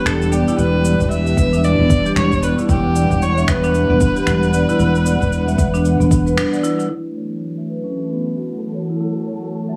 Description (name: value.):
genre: organic downtempo.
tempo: 114 BPM.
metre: 4/4.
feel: swing 59% on 16ths.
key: E dorian.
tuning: A4 = 440 Hz.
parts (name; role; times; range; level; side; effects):
clear kamancheh; melody; 0.0-6.4 s; G4 to E5; -24 LUFS; equal; tape echo.
warm analog pad; sustained chords; 0.0-9.8 s; E3 to F#5; -25 LUFS; equal; chorus, sidechain pumping.
marimba with medium hard mallets; arpeggios; 0.0-9.7 s; B3 to E5; -24 LUFS; equal; low-pass filter, tape echo.
fretless electric bass; bass; 0.1-6.4 s; E1; -20 LUFS; equal; tube saturation, sidechain pumping.
electronic finger snaps and shaker; drums; 0.1-9.8 s; none; -30 LUFS; equal; studio reverb.
electronic kick drum; drums; 1.0-6.2 s; none; -21 LUFS; equal; studio reverb.
twinkling granular texture; texture; 7.6-9.8 s; A4 to A5; -40 LUFS; equal; built-in reverb.
room: light reverb, digital ambience.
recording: low-pass filter, small room ambience.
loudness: -17 LUFS.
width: mono.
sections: 0.0-6.9 A section; 6.9-9.8 B section.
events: break 6.4-6.9; band accent 6.4; filter sweep on marimba 6.9-9.8; filter sweep 6.9-9.8.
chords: 0.0 Em7; 6.9 F#m7.